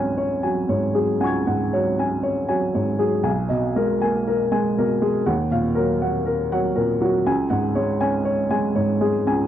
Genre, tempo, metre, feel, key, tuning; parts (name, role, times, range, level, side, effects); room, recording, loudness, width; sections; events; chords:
neoclassical minimalist piano; 60 BPM; 4/4; rubato; A4 = 440 Hz
warm upright piano; solo; 0.0-9.5 s; B1 to G#6; -19 LUFS; equal
studio reverb; dry, close 1970s-style studio recording; -19 LUFS; side -11 dB against mid
0.0-9.5 A section
0.0 C#sus4; 3.3 G#madd9/B; 5.3 D#madd9; 7.3 C#sus4